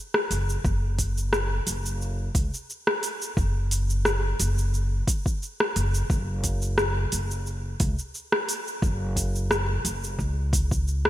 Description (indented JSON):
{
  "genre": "organic downtempo",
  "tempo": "88 BPM",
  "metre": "4/4",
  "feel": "swing 54% on 16ths",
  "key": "unclear",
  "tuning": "A4 = 439 Hz",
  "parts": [
    { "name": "afro-pop drum kit", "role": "drums", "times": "0.1-11.1 s", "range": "hi-hat, rim click, shaker", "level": "-28 LUFS", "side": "equal", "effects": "overdrive, gated reverb" },
    { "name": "upright bass", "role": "bass", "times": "0.3-11.1 s", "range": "F#1 to C#2", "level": "-26 LUFS", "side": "equal", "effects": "sidechain pumping" },
    { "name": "electronic kick drum", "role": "drums", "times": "0.6-10.8 s", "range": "none", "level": "-26 LUFS", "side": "equal", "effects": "overdrive" }
  ],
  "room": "light reverb",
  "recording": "bright 1980s-style digital production",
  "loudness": "-24 LUFS",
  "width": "side -14 dB against mid",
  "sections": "0.0-11.1 A section",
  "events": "none",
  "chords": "none"
}